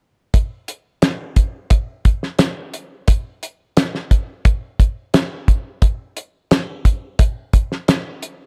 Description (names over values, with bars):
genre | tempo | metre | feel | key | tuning
rock | 88 BPM | 4/4 | straight | none | none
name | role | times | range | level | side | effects
cloth-damped thuddy drum kit | drums | 0.3-8.4 s | hi-hat, kick drum, snare drum | -17 LUFS | equal | none
room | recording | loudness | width
little or no reverb | none | -19 LUFS | mono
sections
0.3-8.5 A section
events
none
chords
none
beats
| 0.34 1.02 1.71 2.40 | 3.08 3.77 4.45 5.14 | 5.82 6.51 7.19 7.88